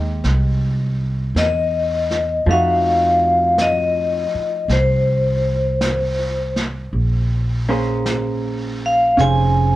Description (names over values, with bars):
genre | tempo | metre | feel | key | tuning
jazz ballad | 54 BPM | 4/4 | swing 68% on 8ths | F minor | A4 = 440 Hz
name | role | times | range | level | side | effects
vintage hollow-body jazz guitar | accompaniment | 0.0-9.8 s | F3 to C5 | -24 LUFS | right 2 dB | cassette tape, plate reverb
upright bass | bass | 0.0-9.8 s | F1 to F2 | -20 LUFS | right 1 dB | none
jazz brush drum kit | drums | 0.2-9.8 s | brushed snare drum, hi-hat, snare drum | -29 LUFS | right 1 dB | cassette tape
vibraphone with medium hard mallets | melody | 1.4-9.8 s | C5 to Ab5 | -17 LUFS | left 2 dB | cassette tape, plate reverb
room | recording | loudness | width
light reverb | home recording on cassette | -16 LUFS | side -15 dB against mid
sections
0.0-9.8 A section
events
none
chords
0.0 Fm9 (rootless); 2.5 F7b9; 6.9 Bbm9